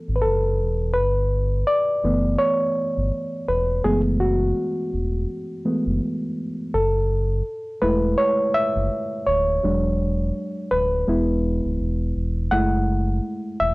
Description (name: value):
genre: lo-fi hip hop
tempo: 83 BPM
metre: 4/4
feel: swing 59% on 16ths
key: F# minor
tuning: A4 = 442 Hz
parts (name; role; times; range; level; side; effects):
- reed electric piano; accompaniment; 0.0-13.7 s; E3 to F#5; -21 LUFS; equal; none
- sub bass with octave; bass; 0.1-13.7 s; D1 to G#1; -23 LUFS; equal; tube saturation
room: moderate small room reverb, RT60 0.5 s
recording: worn, warbling old tape, cassette tape, warbly pitch drift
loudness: -20 LUFS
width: side -22 dB against mid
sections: 0.0-6.7 A section; 6.7-13.7 B section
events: reed electric piano solo 0.0-6.7, 6.7-13.7; stop 6.0-6.7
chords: 0.0 F#m11; 1.0 G69; 3.8 F#m11; 6.7 F#m9; 9.6 E9; 11.1 E7; 12.5 F#m9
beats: 0.23 | 0.95 1.68 2.40 3.12 | 3.84 4.57 5.29 6.01 | 6.74 7.46 8.18 8.90 | 9.63 10.35 11.07 11.80 | 12.52 13.24